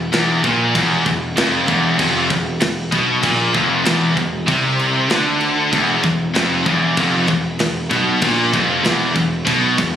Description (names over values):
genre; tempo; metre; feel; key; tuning
heavy metal; 96 BPM; 4/4; straight; unclear; A4 = 441 Hz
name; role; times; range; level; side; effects
crunchy overdriven guitar; riff; 0.0-10.0 s; E2 to D3; -22 LUFS; equal; none
scooped high-gain guitar; riff; 0.0-10.0 s; E2 to D3; -19 LUFS; left 6 dB; distortion
scooped high-gain guitar; riff; 0.0-10.0 s; E2 to D3; -20 LUFS; right 7 dB; distortion
fuzz picked electric bass; bass; 0.0-10.0 s; E1 to D2; -24 LUFS; equal; overdrive
tight metal drum kit; drums; 0.1-9.9 s; crash cymbal, kick drum, snare drum; -23 LUFS; equal; none
room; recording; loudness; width
studio reverb; recorded on a phone in the room; -14 LUFS; side -9 dB against mid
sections
0.0-10.0 A section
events
none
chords
0.0 E5